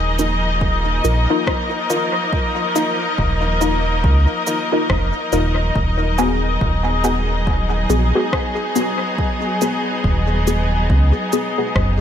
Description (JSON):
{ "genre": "ambient dub", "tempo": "70 BPM", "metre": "4/4", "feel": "swing 60% on 16ths", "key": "Eb minor", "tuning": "A4 = 444 Hz", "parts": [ { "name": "rich symphonic string section", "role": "sustained chords", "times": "0.0-12.0 s", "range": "F3 to Eb5", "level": "-20 LUFS", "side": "left 2 dB", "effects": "none" }, { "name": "round analog bass", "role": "bass", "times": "0.0-12.0 s", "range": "Eb1 to Db2", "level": "-18 LUFS", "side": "equal", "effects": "none" }, { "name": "filtered dub chord stab", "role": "stabs", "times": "0.2-11.7 s", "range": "Cb4 to Bb4", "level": "-23 LUFS", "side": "left 2 dB", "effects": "phaser, dub echo" }, { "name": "electronic cabasa and rim click", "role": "drums", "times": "0.2-12.0 s", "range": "none", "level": "-28 LUFS", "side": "equal", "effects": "overdrive, dub echo" }, { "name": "electronic kick drum", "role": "drums", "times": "0.6-12.0 s", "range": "none", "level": "-22 LUFS", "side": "equal", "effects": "none" } ], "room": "light reverb", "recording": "echo-heavy mix", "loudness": "-16 LUFS", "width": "side -9 dB against mid", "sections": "0.0-12.0 A section", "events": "none", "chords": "0.0 Ebsus2; 5.8 Abm7/Eb" }